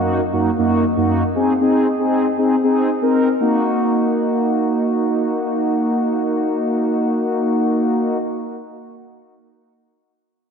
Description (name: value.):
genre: pop.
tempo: 117 BPM.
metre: 4/4.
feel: straight.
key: Eb dorian.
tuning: A4 = 439 Hz.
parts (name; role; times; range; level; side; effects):
mellow synth brass; solo; 0.0-8.2 s; Gb2 to Bb4; -16 LUFS; equal; chorus.
room: wet concert hall reverb, RT60 2.1 s.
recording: none.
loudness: -16 LUFS.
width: side -6 dB against mid.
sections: 0.0-3.4 A section; 3.4-7.5 B section.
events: none.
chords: 0.0 Ebm/Gb; 1.4 Abadd9; 3.4 Ebm.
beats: 0.33 0.84 | 1.35 1.87 2.38 2.89 | 3.40 3.92 4.43 4.94 | 5.46 5.97 6.48 6.99.